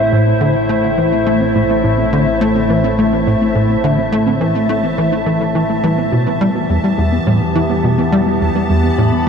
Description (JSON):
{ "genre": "ambient, sequencer-driven space music", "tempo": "105 BPM", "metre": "4/4", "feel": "straight", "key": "A minor", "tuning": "A4 = 440 Hz", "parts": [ { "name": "evolving wavetable pad", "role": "sustained chords", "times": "0.0-9.3 s", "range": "A2 to B5", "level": "-16 LUFS", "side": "left 1 dB", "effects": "chorus, built-in reverb" }, { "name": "soft round pluck", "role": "arpeggios", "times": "0.0-9.3 s", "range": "G3 to A4", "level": "-22 LUFS", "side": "moving between left 2 dB and right 4 dB", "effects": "chorus, auto-pan, tape echo" }, { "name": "analog drone", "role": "bass", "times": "0.0-9.3 s", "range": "A1 to E2", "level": "-25 LUFS", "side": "equal", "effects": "chorus" }, { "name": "bubbling stepped-filter texture", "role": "texture", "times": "0.0-9.3 s", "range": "A5", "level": "-28 LUFS", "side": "right 1 dB", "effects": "chorus, built-in reverb" }, { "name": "tight sequencer bass", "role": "riff", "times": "0.1-9.3 s", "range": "E2 to A3", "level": "-16 LUFS", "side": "equal", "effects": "ensemble chorus, tape echo" } ], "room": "wet huge ambient reverb, RT60 8.2 s", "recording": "dark, warm production", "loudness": "-12 LUFS", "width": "side -6 dB against mid", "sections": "0.0-9.3 A section", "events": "fade-in on synth texture 0.0-9.3; filter sweep on synth arpeggio sound 0.0-9.3", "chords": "0.0 Am; 5.8 Em", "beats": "0.12 0.70 | 1.27 1.84 2.41 2.98 | 3.55 4.12 4.70 5.27 | 5.84 6.41 6.98 7.55 | 8.12 8.70 9.27" }